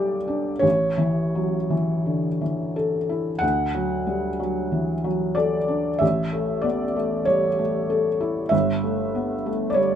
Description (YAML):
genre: classical, romantic nocturne for solo piano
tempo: 42-49 BPM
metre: 4/4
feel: rubato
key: unclear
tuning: A4 = 440 Hz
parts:
  - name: felt-muted upright piano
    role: solo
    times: 0.0-10.0 s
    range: G1 to F#5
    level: -21 LUFS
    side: equal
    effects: none
room: light reverb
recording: none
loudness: -21 LUFS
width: side -9 dB against mid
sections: 0.0-10.0 A section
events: none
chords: 0.0 G/B; 0.6 A; 3.4 D; 6.0 A; 8.5 A7/G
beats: 0.64 2.07 | 3.43 4.73 6.02 7.28 | 8.52 9.78